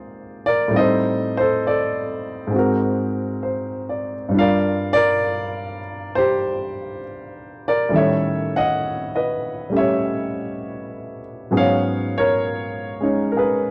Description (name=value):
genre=jazz ballad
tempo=67 BPM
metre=4/4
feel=swing 67% on 8ths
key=unclear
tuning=A4 = 440 Hz
part: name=warm grand piano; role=solo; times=0.0-13.7 s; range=G2 to Gb5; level=-21 LUFS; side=equal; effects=none
room=light reverb, studio ambience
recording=dry, close 1970s-style studio recording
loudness=-21 LUFS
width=mono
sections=0.0-13.7 A section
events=none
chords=0.0 Ab6; 0.7 Am7b5; 2.5 Ab9; 4.3 Gm7; 7.9 A7#11; 11.5 Abm11